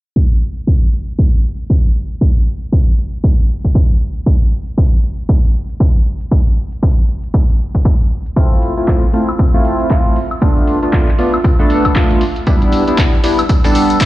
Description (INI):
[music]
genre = deep house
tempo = 117 BPM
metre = 4/4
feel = swing 59% on 16ths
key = unclear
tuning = A4 = 440 Hz
[part]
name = electronic kick drum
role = drums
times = 0.2-14.1 s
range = none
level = -12 LUFS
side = equal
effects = none
[part]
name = punchy analog drum machine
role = drums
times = 0.2-14.1 s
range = handclaps, hi-hat, woodblock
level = -23 LUFS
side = left 1 dB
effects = low-pass filter on hats, low-pass filter on snare, low-pass filter on perc
[part]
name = chorused polysynth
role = stabs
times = 8.4-14.1 s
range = G3 to A4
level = -14 LUFS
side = equal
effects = sidechain pumping, tape echo
[part]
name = soft brush drum kit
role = drums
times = 8.4-14.1 s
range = hi-hat, snare drum, tambourine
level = -32 LUFS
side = right 1 dB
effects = none
[sound]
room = little or no reverb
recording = played on a big sound system in a bare room, large studio reverb, low-pass filter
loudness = -11 LUFS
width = side -17 dB against mid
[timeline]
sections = 0.2-14.1 A section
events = filter sweep on drum 0.2-14.1; filter sweep 0.2-14.1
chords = 0.2 N.C.; 8.4 Fmaj7/A; 10.4 Bm7b5/A; 12.5 Em7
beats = | 0.16 0.67 1.19 1.70 | 2.21 2.73 3.24 3.75 | 4.26 4.78 5.29 5.80 | 6.31 6.83 7.34 7.85 | 8.37 8.88 9.39 9.90 | 10.42 10.93 11.44 11.96 | 12.47 12.98 13.49 14.01